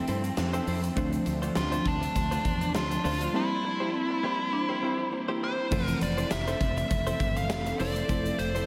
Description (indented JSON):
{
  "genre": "1980s-style pop",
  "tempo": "101 BPM",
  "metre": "4/4",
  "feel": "swing 55% on 16ths",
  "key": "F major",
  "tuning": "A4 = 440 Hz",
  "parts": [
    { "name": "nasal lead guitar with a parked wah", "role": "melody", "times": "0.0-8.7 s", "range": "C4 to F5", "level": "-34 LUFS", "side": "equal", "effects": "overdrive, delay" },
    { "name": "mellow FM electric piano", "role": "accompaniment", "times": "0.0-8.7 s", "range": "E3 to E4", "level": "-36 LUFS", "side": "equal", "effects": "chorus, tremolo" },
    { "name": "granular cloud pad", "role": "sustained chords", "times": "0.2-8.7 s", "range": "F3 to C6", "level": "-40 LUFS", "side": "equal", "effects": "built-in reverb" },
    { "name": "direct-recorded clean electric guitar", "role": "riff", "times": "0.0-8.7 s", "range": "A3 to C5", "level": "-39 LUFS", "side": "equal", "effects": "lush chorus, delay" },
    { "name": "fretless electric bass", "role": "bass", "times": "0.1-8.6 s", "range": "F1 to G2", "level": "-35 LUFS", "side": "equal", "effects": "analog chorus" },
    { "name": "big rock drum kit", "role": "drums", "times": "0.1-8.7 s", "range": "crash cymbal, hi-hat, kick drum, snare drum, tambourine", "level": "-36 LUFS", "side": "equal", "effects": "none" },
    { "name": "egg shaker", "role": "percussion", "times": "0.2-8.7 s", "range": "none", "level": "-54 LUFS", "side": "equal", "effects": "none" },
    { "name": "marimba with medium mallets", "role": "second line", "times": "3.9-5.7 s", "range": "Bb3 to D4", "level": "-39 LUFS", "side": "equal", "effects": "delay" }
  ],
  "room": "wet huge ambient reverb, RT60 8.3 s",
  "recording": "dreamy mix soaked in reverb",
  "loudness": "-29 LUFS",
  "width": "mono",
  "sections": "0.0-5.7 A section; 5.7-8.7 B section",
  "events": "none",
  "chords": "0.0 Fmaj7; 1.0 Dm7; 3.3 C7; 5.7 Fmaj7"
}